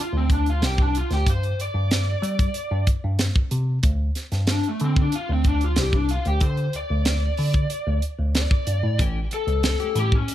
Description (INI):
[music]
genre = straight-eighth soul blues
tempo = 93 BPM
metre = 4/4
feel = straight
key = D minor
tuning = A4 = 435 Hz
[part]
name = lead guitar through a small cranked amp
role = melody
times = 0.0-10.3 s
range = A3 to D5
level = -27 LUFS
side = left 2 dB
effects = overdrive
[part]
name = bell-like tine electric piano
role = bass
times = 0.1-10.2 s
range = A1 to G3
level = -23 LUFS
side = equal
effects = phaser
[part]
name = tight funk drum kit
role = drums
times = 0.3-10.3 s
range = hi-hat, kick drum, snare drum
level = -23 LUFS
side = equal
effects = none
[part]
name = clean electric guitar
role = stabs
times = 9.0-10.2 s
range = E3 to G4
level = -32 LUFS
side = left 4 dB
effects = analog chorus, digital delay
[sound]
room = little or no reverb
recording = none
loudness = -20 LUFS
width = side -12 dB against mid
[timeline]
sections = 0.0-10.3 A section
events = lead electric guitar solo 0.0-10.3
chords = 0.0 Csus24; 1.3 G5; 3.8 D5; 9.0 A7